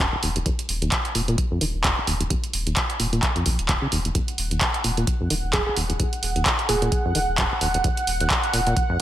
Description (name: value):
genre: acid house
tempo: 130 BPM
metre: 4/4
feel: swing 57% on 16ths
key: Eb minor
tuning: A4 = 440 Hz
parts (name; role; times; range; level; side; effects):
- deep acid bass; riff; 0.0-9.0 s; Eb1 to Eb3; -26 LUFS; equal; tube saturation
- warm sub bass; bass; 0.0-8.7 s; Eb1 to Bb1; -28 LUFS; equal; sidechain pumping
- electronic kick drum; drums; 0.0-8.9 s; none; -26 LUFS; equal; none
- punchy analog drum machine; drums; 0.0-8.9 s; handclaps, hi-hat; -24 LUFS; right 1 dB; none
- lush unison pad; sustained chords; 4.1-9.0 s; Gb5; -28 LUFS; right 3 dB; chorus, sidechain pumping
- soft struck synth lead; melody; 5.5-7.0 s; Ab4; -29 LUFS; right 2 dB; chorus, ping-pong delay
room: light reverb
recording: none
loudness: -20 LUFS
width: side -12 dB against mid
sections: 0.0-9.0 A section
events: filter sweep on acid bass 0.0-9.0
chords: 0.0 Ebm